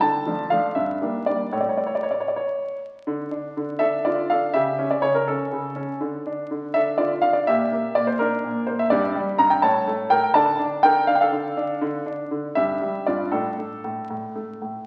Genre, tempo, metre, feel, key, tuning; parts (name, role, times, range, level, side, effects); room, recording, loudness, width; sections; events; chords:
classical-period piano sonatina; 77-84 BPM (dotted quarters); 6/8; rubato; D minor; A4 = 440 Hz
clear concert grand piano; solo; 0.0-14.9 s; G2 to Bb5; -23 LUFS; equal
wet recital hall reverb, RT60 1.4 s; very old 78 rpm record, vinyl crackle; -23 LUFS; mono
0.0-3.1 A section; 3.1-14.9 B section
0.0 Dm; 0.8 Gm; 1.5 N.C.; 3.1 Dm; 4.6 A7/C#; 6.0 Dm; 7.5 Bb; 8.9 N.C.; 9.6 A; 10.4 Dm; 11.8 N.C.; 12.6 Em7/G; 13.3 D5/A; 14.1 N.C.